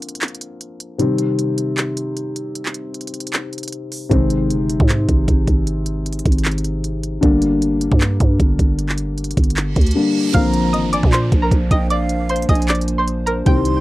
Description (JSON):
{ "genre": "hip hop, trap", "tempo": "154 BPM", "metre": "4/4", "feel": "half-time", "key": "unclear", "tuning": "A4 = 440 Hz", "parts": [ { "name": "dark concert grand piano", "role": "accompaniment", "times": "0.0-13.8 s", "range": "C3 to D4", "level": "-21 LUFS", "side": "left 2 dB", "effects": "low-pass filter, cassette tape" }, { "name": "trap drum kit", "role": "drums", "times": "0.0-13.8 s", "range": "handclaps, hi-hat, kick drum", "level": "-18 LUFS", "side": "right 1 dB", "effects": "cassette tape" }, { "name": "growling 808-style bass", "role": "bass", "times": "4.1-13.8 s", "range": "G1 to Bb2", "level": "-20 LUFS", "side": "equal", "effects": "none" }, { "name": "reverse cymbal and downlifter", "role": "sound effects", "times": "9.7-13.5 s", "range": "none", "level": "-31 LUFS", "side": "right 5 dB", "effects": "none" }, { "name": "string-like resonator pluck", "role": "melody", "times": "10.3-13.8 s", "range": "Bb4 to G6", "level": "-22 LUFS", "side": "equal", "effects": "chorus, low-pass filter, cassette tape" }, { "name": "breathy concert flute", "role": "second line", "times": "10.3-13.8 s", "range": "F5 to C6", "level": "-28 LUFS", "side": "right 5 dB", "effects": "cassette tape, tape echo" }, { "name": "dark analog pad", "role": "sustained chords", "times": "10.3-13.8 s", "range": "G3 to C5", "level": "-26 LUFS", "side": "right 2 dB", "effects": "chorus, cassette tape" } ], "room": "little or no reverb", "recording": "home recording on cassette", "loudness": "-15 LUFS", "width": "side -17 dB against mid", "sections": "0.0-10.3 A section; 10.3-13.8 B section", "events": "break 0.0-4.1; reverse cymbal 9.7-10.3", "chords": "0.0 Bbadd9; 1.0 Cm; 4.1 Ab; 7.2 Gm; 10.3 Bbadd9" }